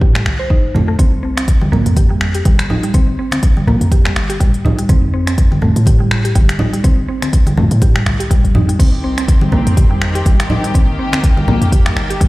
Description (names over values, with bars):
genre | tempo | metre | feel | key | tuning
afro house | 123 BPM | 4/4 | swing 56% on 16ths | C dorian | A4 = 440 Hz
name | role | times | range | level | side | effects
mallet-like synth pluck | arpeggios | 0.0-12.3 s | G3 to C5 | -20 LUFS | equal | chorus, cassette tape, sidechain pumping, tape echo
warm 808-style bass | bass | 0.0-12.3 s | F1 to A2 | -17 LUFS | equal | sidechain pumping
electronic kick drum | drums | 0.0-12.3 s | none | -13 LUFS | equal | none
afro-pop drum kit | drums | 0.2-12.3 s | crash cymbal, finger snaps, hi-hat, toms | -21 LUFS | equal | none
congas | percussion | 0.2-11.6 s | none | -19 LUFS | right 1 dB | none
clear chamber string section | sustained chords | 8.8-12.3 s | Eb3 to G4 | -22 LUFS | left 2 dB | sidechain pumping
room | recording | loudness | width
little or no reverb | played on a big sound system in a bare room, large studio reverb | -11 LUFS | side -19 dB against mid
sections
0.0-12.3 A section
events
none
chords
0.0 F; 1.0 C5; 4.9 F; 8.8 Cm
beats
0.01 0.50 | 0.99 1.48 1.97 2.45 | 2.94 3.43 3.92 4.41 | 4.89 5.38 5.87 6.36 | 6.84 7.33 7.82 8.31 | 8.79 9.28 9.77 10.26 | 10.75 11.23 11.72 12.21